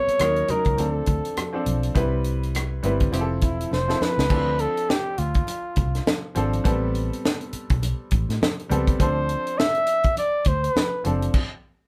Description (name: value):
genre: lush 1970s-style soul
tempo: 102 BPM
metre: 4/4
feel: swing 58% on 16ths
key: unclear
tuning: A4 = 440 Hz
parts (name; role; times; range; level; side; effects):
- warm flugelhorn; melody; 0.0-11.1 s; E4 to E5; -26 LUFS; equal; none
- clear baby grand piano; accompaniment; 0.0-11.4 s; E3 to B4; -31 LUFS; equal; none
- vintage muted fingered electric bass; bass; 0.1-11.3 s; E1 to A2; -28 LUFS; equal; none
- tight funk drum kit; drums; 0.1-11.5 s; crash cymbal, hi-hat, kick drum, rim click, snare drum; -26 LUFS; equal; none
- congas; percussion; 0.2-11.2 s; none; -37 LUFS; equal; none
room: moderate studio reverb, RT60 0.5 s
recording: band playing live in one room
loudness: -23 LUFS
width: mono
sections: 0.0-4.3 A section; 4.3-11.9 B section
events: drum fill 3.7-4.3; stop 11.3-11.9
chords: 0.2 D#m7; 0.8 Dm7; 2.0 Cmaj7; 3.1 Fmaj7; 4.3 Dm7; 6.7 Am9; 9.0 Dm7; 11.3 N.C.